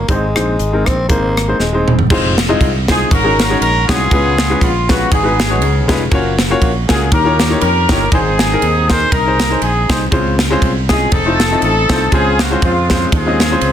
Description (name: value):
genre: uptempo gospel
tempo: 120 BPM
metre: 4/4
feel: swing 56% on 8ths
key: Db major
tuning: A4 = 441 Hz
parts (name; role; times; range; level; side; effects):
- growling tenor saxophone; melody; 0.0-2.0 s; Ab3 to C4; -19 LUFS; left 1 dB; none
- fingered electric bass; bass; 0.0-13.7 s; Eb1 to F2; -18 LUFS; equal; none
- clear baby grand piano; accompaniment; 0.1-13.7 s; Ab2 to Eb5; -18 LUFS; left 2 dB; none
- crisp fusion drum kit; drums; 0.1-13.7 s; crash cymbal, hi-hat, kick drum, ride cymbal, rim click, snare drum, toms; -16 LUFS; equal; none
- warm horn section; melody; 2.9-13.7 s; Ab3 to C5; -16 LUFS; equal; none
room: light reverb, studio ambience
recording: dense, heavily limited modern master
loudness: -11 LUFS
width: side -10 dB against mid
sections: 0.0-2.1 A section; 2.1-13.7 B section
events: drum fill 1.6-2.1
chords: 0.1 Ab; 2.1 Fm7; 3.1 Ab9sus4; 4.1 Db7; 5.1 Abm7; 5.6 Db9; 6.1 Gbmaj7; 7.1 Eb9; 8.1 Ab; 10.1 Dbmaj7; 11.1 F7; 12.1 Dbmaj7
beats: | 0.09 0.59 1.10 1.60 | 2.10 2.61 3.11 3.61 | 4.11 4.61 5.11 5.62 | 6.12 6.62 7.12 7.62 | 8.12 8.62 9.12 9.62 | 10.12 10.62 11.12 11.62 | 12.12 12.62 13.12 13.62